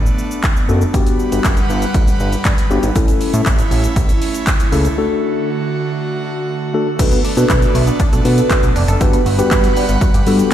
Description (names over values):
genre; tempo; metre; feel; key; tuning
dance-pop; 119 BPM; 4/4; straight; B minor; A4 = 441 Hz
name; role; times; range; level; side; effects
airy breathy pad; sustained chords; 0.0-10.5 s; D3 to F#5; -22 LUFS; right 2 dB; chorus, sidechain pumping
fat analog bass; bass; 0.0-10.4 s; E#1 to B2; -17 LUFS; equal; sidechain pumping
house drum kit; drums; 0.1-10.5 s; crash cymbal, handclaps, hi-hat, kick drum, shaker; -16 LUFS; equal; none
mellow tine electric piano; accompaniment; 0.7-10.5 s; A3 to B4; -18 LUFS; left 3 dB; sidechain pumping
egg shaker; percussion; 3.0-5.0 s; none; -36 LUFS; right 12 dB; none
tight sequenced synth; arpeggios; 7.0-10.2 s; G3 to B4; -23 LUFS; right 3 dB; chorus, sidechain pumping, digital delay
room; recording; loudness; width
light reverb, digital ambience; played on a big sound system in a bare room, stone room reverb; -13 LUFS; side -11 dB against mid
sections
0.0-7.0 A section; 7.0-10.5 B section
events
break 5.0-7.0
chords
0.0 Bm7; 0.9 Gmaj7; 3.0 A; 5.0 D; 7.0 Bm7; 9.0 Gmaj7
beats
0.44 | 0.94 1.45 1.95 2.45 | 2.96 3.46 3.97 4.47 | 4.97 5.48 5.98 6.49 | 6.99 7.50 8.00 8.50 | 9.01 9.51 10.02 10.52